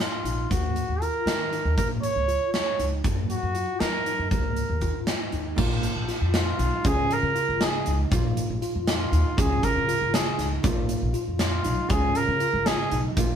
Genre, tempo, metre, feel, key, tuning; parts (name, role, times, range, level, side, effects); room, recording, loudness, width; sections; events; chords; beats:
progressive instrumental, band music in an uneven meter; 237 BPM (eighths); 5/8; straight; A4 = 440 Hz
mellow trumpet; melody; 0.0-13.0 s; F4 to Db5; -27 LUFS; right 2 dB
bright tine electric piano; arpeggios; 0.0-13.4 s; Bb3 to F4; -32 LUFS; left 2 dB; medium stereo tremolo
big rock drum kit; drums; 0.0-13.3 s; crash cymbal, hi-hat, kick drum, snare drum; -27 LUFS; equal
upright bass; bass; 0.2-13.4 s; Ab1 to Gb3; -28 LUFS; equal
hollow-body jazz guitar; accompaniment; 5.6-13.4 s; Bb2 to Ab4; -33 LUFS; right 2 dB
wet studio reverb, RT60 0.6 s; band playing live in one room; -22 LUFS; side -8 dB against mid
0.0-5.6 A section; 5.6-13.4 B section
0.0 N.C.; 0.5 Ebm7; 3.0 Gb; 5.6 Bbsus4; 6.8 Db; 8.1 Bbsus4; 9.4 Db; 10.6 Bbsus4; 11.9 Db
0.00 0.25 | 0.51 0.76 1.01 1.27 1.52 | 1.78 2.03 2.28 2.54 2.79 | 3.04 3.30 3.55 3.81 4.06 | 4.31 4.57 4.82 5.07 5.33 | 5.58 5.83 6.09 6.34 6.59 | 6.84 7.10 7.35 7.61 7.86 | 8.11 8.36 8.62 8.87 9.12 | 9.38 9.63 9.88 10.13 10.39 | 10.64 10.89 11.15 11.40 11.65 | 11.90 12.16 12.41 12.66 12.92 | 13.17